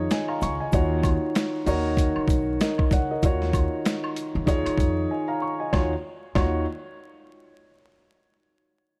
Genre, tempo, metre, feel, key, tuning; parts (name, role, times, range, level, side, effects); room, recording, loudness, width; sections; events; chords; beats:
hip hop, boom-bap hip-hop; 96 BPM; 4/4; swing 58% on 16ths; Eb minor; A4 = 440 Hz
dark grand piano; accompaniment; 0.0-6.6 s; Eb3 to Db6; -28 LUFS; equal; cassette tape, high-pass filter, low-pass filter
upright bass; bass; 0.0-6.6 s; B1 to F2; -30 LUFS; equal
boom bap sampler-style drum kit; drums; 0.1-6.5 s; hi-hat, kick drum, snare drum; -26 LUFS; equal
egg shaker and woodblock; percussion; 0.1-6.6 s; -41 LUFS; equal
light reverb, small room ambience; vinyl crackle; -25 LUFS; mono
0.0-5.7 A section; 5.7-8.2 B section
break 5.1-5.7
0.0 Db69; 0.7 Ebm9; 1.7 Bmaj9; 3.2 Ebm9; 4.5 Eb9sus4; 5.7 Ebm9
0.10 | 0.73 1.35 1.98 2.60 | 3.23 3.85 4.48 5.10 | 5.73 6.35